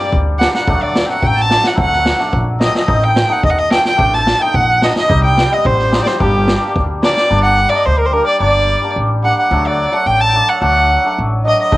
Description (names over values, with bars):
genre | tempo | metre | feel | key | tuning
klezmer | 108 BPM | 2/4 | straight | G harmonic minor | A4 = 440 Hz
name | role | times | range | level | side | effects
rich violin | melody | 0.0-11.8 s | G4 to A5 | -15 LUFS | equal | cassette tape
accordion | second line | 0.0-11.8 s | G4 to A5 | -21 LUFS | right 1 dB | cassette tape
hammered dulcimer | accompaniment | 0.0-11.8 s | F#3 to F#4 | -20 LUFS | left 1 dB | cassette tape
street-band drum kit | drums | 0.0-7.3, 11.7-11.8 s | kick drum, snare drum | -17 LUFS | equal | cassette tape
upright bass | bass | 0.1-11.8 s | G1 to Eb2 | -17 LUFS | equal | none
room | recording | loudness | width
light reverb | home recording on cassette | -11 LUFS | side -17 dB against mid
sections
0.0-7.3 A section; 7.3-11.8 A section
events
none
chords
0.0 Gm; 0.7 D; 2.9 Adim; 5.1 Cm; 6.2 Gm; 9.5 D